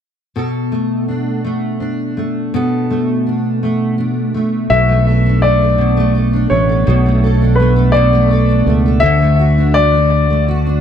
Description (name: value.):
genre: pop.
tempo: 55 BPM (dotted quarters).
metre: 6/8.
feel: straight.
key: B minor.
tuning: A4 = 440 Hz.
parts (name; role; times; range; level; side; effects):
fingerpicked steel-string acoustic guitar; accompaniment; 0.4-10.8 s; B2 to A4; -15 LUFS; equal; double-tracked left and right.
clear grand piano; melody; 4.7-10.4 s; B4 to E5; -16 LUFS; left 3 dB; tape echo.
fingered electric bass; bass; 4.7-10.8 s; A1 to D2; -14 LUFS; equal; none.
room: light reverb, small room reverb.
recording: none.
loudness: -12 LUFS.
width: side -8 dB against mid.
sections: 0.4-4.7 A section; 4.7-10.8 B section.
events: none.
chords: 0.4 Bm7; 9.0 D.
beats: | 0.37 1.46 | 2.54 3.62 | 4.70 5.79 | 6.87 7.95 | 9.03 10.12.